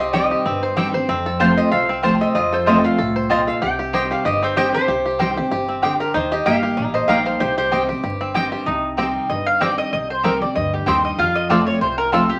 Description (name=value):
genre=bluegrass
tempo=190 BPM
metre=4/4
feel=swing 55% on 8ths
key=C dorian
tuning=A4 = 440 Hz
part: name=bluegrass banjo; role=melody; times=0.0-12.2 s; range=A3 to C5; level=-26 LUFS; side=equal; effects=none
part: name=lap resonator guitar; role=second line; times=0.0-12.4 s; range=Eb4 to G5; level=-24 LUFS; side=equal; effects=none
part: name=picked steel-string acoustic guitar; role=accompaniment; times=0.0-12.4 s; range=F2 to G4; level=-25 LUFS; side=equal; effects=none
part: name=upright bass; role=bass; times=0.0-12.3 s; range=G1 to F2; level=-34 LUFS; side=equal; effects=none
part: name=mandolin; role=stabs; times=0.1-12.2 s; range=Bb3 to A5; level=-24 LUFS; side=equal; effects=none
part: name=mandolin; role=melody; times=9.3-12.4 s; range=G4 to F5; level=-22 LUFS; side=equal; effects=none
room=wet studio reverb, RT60 0.6 s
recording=vinyl crackle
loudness=-19 LUFS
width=mono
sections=0.0-8.7 A section; 8.7-12.4 B section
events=resonator guitar played with a steel bar solo 0.0-8.7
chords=0.0 Cm; 1.1 F; 3.6 Cm; 6.1 Eb; 7.4 Cm; 11.2 F